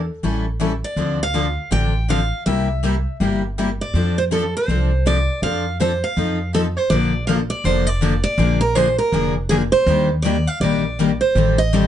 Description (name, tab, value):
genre	acoustic string swing (jazz manouche)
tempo	162 BPM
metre	4/4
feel	swing 62% on 8ths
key	F major, Bb major from 6.9 s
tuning	A4 = 440 Hz
part	picked steel-string acoustic guitar	melody	0.0-11.9 s	Ab4 to G5	-21 LUFS	right 2 dB	plate reverb
part	upright bass	bass	0.0-11.9 s	F1 to F2	-21 LUFS	right 1 dB	none
part	picked acoustic archtop guitar	accompaniment	0.2-11.8 s	C3 to A4	-27 LUFS	right 2 dB	none
part	picked steel-string acoustic guitar	accompaniment	0.2-11.8 s	C3 to A4	-21 LUFS	left 5 dB	none
room	light reverb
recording	nothing above 10.3 kHz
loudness	-17 LUFS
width	side -10 dB against mid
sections	0.0-6.9 A section; 6.9-11.9 B section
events	none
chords	0.2 A7; 1.0 Dm7; 2.5 C7; 3.9 F6; 6.2 F7; 6.9 Bbmaj7; 8.4 Bb7; 9.9 Ebmaj7; 11.4 Am7b5